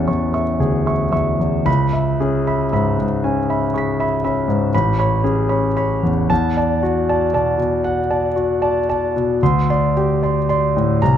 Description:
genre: classical, impressionist solo piano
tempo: 37-41 BPM (dotted quarters)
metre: 9/8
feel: rubato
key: A major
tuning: A4 = 436 Hz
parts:
  - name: clear concert grand piano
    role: solo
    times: 0.0-11.2 s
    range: A1 to B6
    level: -16 LUFS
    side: equal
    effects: none
room: light reverb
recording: close, detailed microphones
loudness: -16 LUFS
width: side -9 dB against mid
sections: 0.0-11.2 A section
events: none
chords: 0.0 Amaj7; 1.7 C#m7; 4.7 Amaj9; 6.3 E11; 9.4 D7sus4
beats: 0.09 | 1.67 3.24 4.73 | 6.30 7.84 9.40 | 11.01

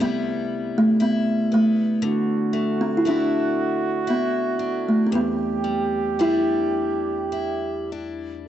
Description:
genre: celtic folk, Celtic slow air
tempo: 51-61 BPM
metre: 3/4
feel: rubato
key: E minor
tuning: A4 = 441 Hz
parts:
  - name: kalimba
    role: melody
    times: 0.0-7.9 s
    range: A3 to E4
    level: -21 LUFS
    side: equal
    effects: cassette tape
  - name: picked steel-string acoustic guitar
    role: accompaniment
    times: 0.0-8.5 s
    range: E2 to E4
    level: -29 LUFS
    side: left 7 dB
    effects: cassette tape
  - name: baroque flute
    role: second line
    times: 2.0-7.9 s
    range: F#4 to G4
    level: -26 LUFS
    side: right 7 dB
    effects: cassette tape
room: moderate spring reverb, RT60 1.6 s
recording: home recording on cassette, nothing above 8.0 kHz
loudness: -20 LUFS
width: side -11 dB against mid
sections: 0.0-8.5 A section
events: none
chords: 0.0 Cmaj7; 2.0 Dadd9; 5.1 Em7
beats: 0.00 1.00 | 2.02 3.04 4.06 | 5.12 6.19 7.33 | 8.48

